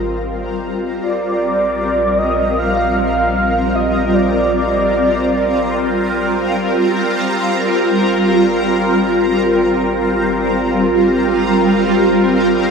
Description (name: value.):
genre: ambient.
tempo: free time.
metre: none.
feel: none.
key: unclear.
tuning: A4 = 440 Hz.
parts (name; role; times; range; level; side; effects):
shimmering ambient pad; sustained chords; 0.0-12.7 s; G3 to Bb4; -14 LUFS; equal; chorus, built-in reverb, phaser.
round analog bass; bass; 0.0-12.7 s; Ab1 to Bb1; -29 LUFS; equal; none.
breathy flute-like synth lead; melody; 1.0-6.4 s; D5 to F5; -19 LUFS; right 1 dB; ensemble chorus, ping-pong delay.
room: wet cathedral reverb, RT60 6.3 s.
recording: in a vast, echoing space.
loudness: -13 LUFS.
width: side -5 dB against mid.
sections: 0.0-7.2 A section; 7.2-12.7 B section.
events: fade-out on analog synth bass 0.0-7.2; filter sweep on ambient pad 0.0-7.2; fade-in on analog synth bass 7.2-12.7.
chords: 0.0 Abmaj7; 1.0 Bb6; 7.2 Abmaj7.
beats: free time.